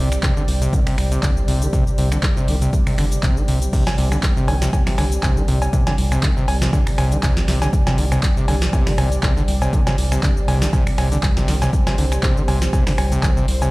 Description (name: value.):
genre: acid house.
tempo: 120 BPM.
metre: 4/4.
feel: swing 55% on 16ths.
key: unclear.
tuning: A4 = 440 Hz.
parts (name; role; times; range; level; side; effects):
warm analog pad; sustained chords; 0.0-13.7 s; C3 to D5; -26 LUFS; right 1 dB; wide subtle chorus, sidechain pumping.
overdriven acid bass; riff; 0.0-13.7 s; C3 to Eb3; -23 LUFS; equal; distortion, tube saturation.
round analog bass; bass; 0.0-13.7 s; G1 to C2; -20 LUFS; equal; sidechain pumping.
booming analog drum machine; drums; 0.1-13.7 s; cowbell, crash cymbal, finger snaps, handclaps, hi-hat, shaker, snare drum; -25 LUFS; equal; none.
electronic kick drum; drums; 0.2-13.3 s; none; -20 LUFS; equal; none.
room: light reverb.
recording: played on a big sound system in a bare room, large studio reverb.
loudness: -16 LUFS.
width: side -21 dB against mid.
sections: 0.0-13.7 A section.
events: none.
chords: 0.0 C5.